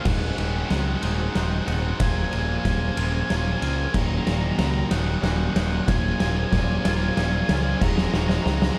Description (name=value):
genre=post-rock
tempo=62 BPM (dotted quarters)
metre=6/8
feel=straight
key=unclear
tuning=A4 = 440 Hz
part: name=octave-fuzz lead guitar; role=melody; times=0.0-8.8 s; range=F5 to Bb5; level=-34 LUFS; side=equal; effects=distortion, tape echo
part: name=warm analog pad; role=sustained chords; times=0.0-8.8 s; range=Eb3 to Ab4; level=-39 LUFS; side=equal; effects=none
part: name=twangy electric guitar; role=arpeggios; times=0.0-8.8 s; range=Eb2 to F4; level=-36 LUFS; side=equal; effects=none
part: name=overdriven electric guitar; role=riff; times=0.0-8.8 s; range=Eb2 to Bb3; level=-32 LUFS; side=equal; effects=none
part: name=growling picked electric bass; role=bass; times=0.1-8.7 s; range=Eb1 to Db2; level=-28 LUFS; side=equal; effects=overdrive
part: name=oversized low-tuned drum kit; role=drums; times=0.1-8.8 s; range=crash cymbal, kick drum, ride cymbal, snare drum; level=-27 LUFS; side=equal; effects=none
room=small room ambience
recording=dark, warm production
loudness=-23 LUFS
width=mono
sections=0.0-8.8 A section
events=build-up 0.0-8.8; drum fill 0.0-8.8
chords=0.1 Ab7/Eb; 2.0 Bbm7/Eb; 3.9 Ebm7; 5.9 Bbm7/Eb; 7.8 Ab7/Eb